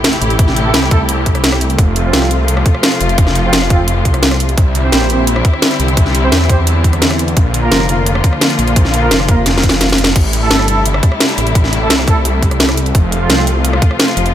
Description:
dark technical drum and bass; 172 BPM; 4/4; straight; A phrygian; A4 = 440 Hz
warm studio string section; sustained chords; 0.0-14.3 s; C3 to G4; -18 LUFS; left 2 dB; sidechain pumping
drum and bass drum kit; drums; 0.0-14.3 s; crash cymbal, hi-hat, rim click, snare drum; -15 LUFS; equal; overdrive, studio ambience
wide detuned saw bass; bass; 0.2-14.3 s; F1 to E2; -15 LUFS; equal; chorus, sidechain pumping
electronic kick drum; drums; 0.4-13.9 s; -11 LUFS; equal; overdrive, studio ambience
dark brass ensemble; stabs; 0.7-13.5 s; F3 to C5; -21 LUFS; right 3 dB; tape echo
light reverb; -10 LUFS; side -11 dB against mid
0.0-14.3 A section
drum fill 9.5-10.2
0.0 Am7; 1.8 F; 4.6 Cadd9; 7.4 Bb; 10.2 Am7; 12.9 F
0.04 | 0.39 0.74 1.09 1.44 | 1.79 2.13 2.48 2.83 | 3.18 3.53 3.88 4.23 | 4.58 4.92 5.27 5.62 | 5.97 6.32 6.67 7.02 | 7.37 7.72 8.06 8.41 | 8.76 9.11 9.46 9.81 | 10.16 10.51 10.86 11.20 | 11.55 11.90 12.25 12.60 | 12.95 13.30 13.65 13.99

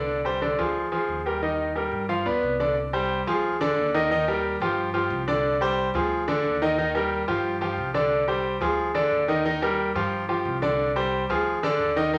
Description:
latin, salsa; 179 BPM; 4/4; straight; C minor; A4 = 438 Hz
bright concert grand piano; accompaniment; 0.0-12.2 s; D3 to F5; -25 LUFS; equal
upright bass; bass; 0.0-12.2 s; C2 to G2; -38 LUFS; equal
wet large studio reverb, RT60 0.9 s; -25 LUFS; mono
0.0-2.8 A section; 2.8-12.2 B section
0.1 Csus2; 0.7 Ddim; 1.4 Eb; 2.1 G7; 2.8 Csus2; 3.4 Ddim; 4.1 Eb; 4.8 G5; 5.4 Csus2; 6.1 Ddim; 6.8 Eb; 7.4 G5; 8.1 Csus2; 8.8 Ddim; 9.4 Eb; 10.1 G5; 10.8 Csus2; 11.5 Ddim
| 0.08 0.41 0.75 1.08 | 1.42 1.76 2.09 2.43 | 2.76 3.10 3.43 3.77 | 4.10 4.43 4.77 5.10 | 5.44 5.77 6.11 6.44 | 6.78 7.11 7.44 7.78 | 8.11 8.45 8.78 9.12 | 9.45 9.78 10.12 10.45 | 10.79 11.12 11.46 11.79 | 12.12

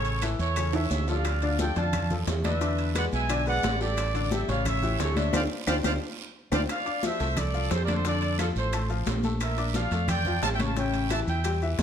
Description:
latin, salsa; 176 BPM; 4/4; straight; D harmonic minor; A4 = 438 Hz
bright trumpet section; melody; 0.0-11.6 s; F4 to A5; -30 LUFS; right 2 dB
bright upright piano; accompaniment; 0.0-11.8 s; C#3 to D6; -32 LUFS; left 6 dB
fingered electric bass; bass; 0.0-11.8 s; A1 to F2; -28 LUFS; right 1 dB
congas; percussion; 0.1-11.8 s; -35 LUFS; left 1 dB
maracas; percussion; 0.1-11.8 s; -43 LUFS; left 8 dB
timbales; percussion; 0.1-11.8 s; -36 LUFS; right 7 dB
claves; percussion; 0.2-11.6 s; -42 LUFS; left 3 dB
guiro; percussion; 0.2-11.8 s; -42 LUFS; right 9 dB
bongos; percussion; 1.3-11.8 s; -38 LUFS; left 7 dB
moderate large studio reverb, RT60 1.1 s; -24 LUFS; side -8 dB against mid
0.0-6.7 A section; 6.7-11.8 B section
drum fill 0.7-1.2, 6.2-6.7; band accent 5.3-6.7
0.0 A; 1.2 Dm; 2.6 E7; 4.0 A7sus4; 4.7 A7; 5.3 Dm7; 6.7 F6; 8.1 Dm; 9.4 Bbmaj7; 10.8 A7
0.22 0.57 0.91 | 1.25 1.59 1.93 2.27 | 2.61 2.96 3.30 3.64 | 3.98 4.32 4.66 5.00 | 5.34 5.68 6.01 6.36 | 6.69 7.03 7.37 7.71 | 8.05 8.39 8.73 9.07 | 9.41 9.75 10.09 10.43 | 10.77 11.11 11.45 11.79

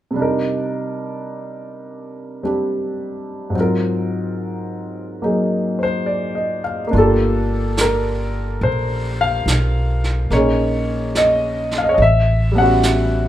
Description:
jazz ballad; 71 BPM; 4/4; swing 68% on 8ths; G minor; A4 = 440 Hz
warm concert grand piano; accompaniment; 0.1-13.3 s; Ab2 to F#5; -18 LUFS; equal
upright bass; bass; 6.9-13.3 s; G1 to B1; -19 LUFS; equal
vintage brush drum kit; drums; 6.9-13.3 s; brushed snare drum, hi-hat, snare drum; -26 LUFS; right 3 dB
moderate large studio reverb, RT60 0.9 s; minimal, uncompressed stereo recording; -16 LUFS; side -12 dB against mid
0.2-6.9 A section; 6.9-13.3 B section
0.2 Cm9; 3.5 Ab13; 6.9 Gm9; 10.3 Bbm7; 12.0 A13
| 0.16 1.01 1.86 2.71 | 3.54 4.38 5.21 6.06 | 6.92 7.77 8.62 9.46 | 10.30 11.14 11.98 12.82

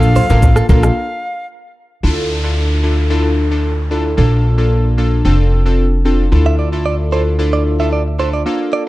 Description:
afrobeats; 112 BPM; 4/4; straight; D minor; A4 = 444 Hz
breathy bright jazz flute; melody; 0.0-1.5 s; F5; -20 LUFS; equal
glassy digital keys; accompaniment; 0.0-8.8 s; Bb3 to A4; -18 LUFS; left 1 dB; chorus
upright bass; bass; 0.0-8.4 s; F1 to D2; -14 LUFS; equal
afro-pop drum kit; drums; 0.0-1.0 s; hi-hat, kick drum, rim click, shaker; -13 LUFS; equal
direct-recorded clean electric guitar; riff; 0.2-0.8, 6.5-8.8 s; A4 to E5; -21 LUFS; right 6 dB; spring reverb, tape echo
bongos and congas; percussion; 0.2-1.0 s; -24 LUFS; left 4 dB
downlifter; sound effects; 2.0-6.3 s; -29 LUFS; equal
digital ambience; dark, warm production; -12 LUFS; side -17 dB against mid
0.0-2.0 A section; 2.0-8.9 B section
break 1.0-2.0
0.0 Bbmaj7; 1.0 N.C.; 2.0 Dmadd9; 4.2 Bbmaj7; 5.2 F6; 6.3 Dmadd9
0.42 0.96 1.50 | 2.03 2.57 3.10 3.64 | 4.17 4.71 5.25 5.78 | 6.32 6.85 7.39 7.92 | 8.46

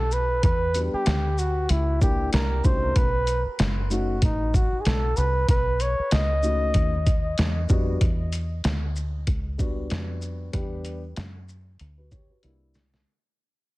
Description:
hip hop, jazz-hop; 95 BPM; 4/4; swing 57% on 16ths; E dorian; A4 = 439 Hz
breathy flugelhorn; melody; 0.0-7.4 s; D#4 to D#5; -27 LUFS; equal; tape echo
deep dub fingered electric bass; bass; 0.0-13.0 s; F#1 to F#2; -26 LUFS; equal
trip hop sampler-style drum kit; drums; 0.1-13.1 s; hi-hat, kick drum, shaker, snare drum; -24 LUFS; equal
dark upright piano; accompaniment; 0.7-12.8 s; G3 to C#5; -32 LUFS; left 1 dB
digital ambience; heavily compressed radio sound; -21 LUFS; side -20 dB against mid
0.0-8.0 A section; 8.0-13.1 B section
fade-out 8.0-13.1; drum fill 12.4-13.1
0.0 Em7; 2.3 C9; 3.0 B7; 7.4 Em9; 12.4 C9
| 0.43 1.06 1.69 2.32 | 2.96 3.59 4.22 4.85 | 5.48 6.11 6.75 7.38 | 8.01 8.64 9.27 9.90 | 10.53 11.17 11.80 12.43

